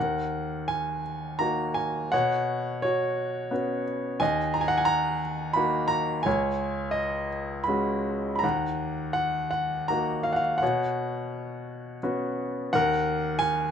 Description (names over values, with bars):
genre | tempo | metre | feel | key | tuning
classical, lyrical solo piano | 85 BPM | 3/4 | uneven beats, rubato | Eb minor | A4 = 438 Hz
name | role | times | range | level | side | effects
bright grand piano | solo | 0.0-13.7 s | Db2 to Cb6 | -25 LUFS | equal | none
room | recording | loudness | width
light reverb | none | -25 LUFS | side -8 dB against mid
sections
0.0-13.7 A section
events
none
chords
0.0 Ebm; 2.1 Bsus2; 4.2 Ebm; 6.3 Dbsus4; 8.4 Ebm; 10.6 Bsus2; 12.7 Ebm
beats
0.69 1.41 | 2.13 2.83 3.52 | 4.20 4.88 5.57 | 6.27 6.97 7.69 | 8.44 9.18 9.91 | 10.62 11.34 12.04 | 12.74 13.43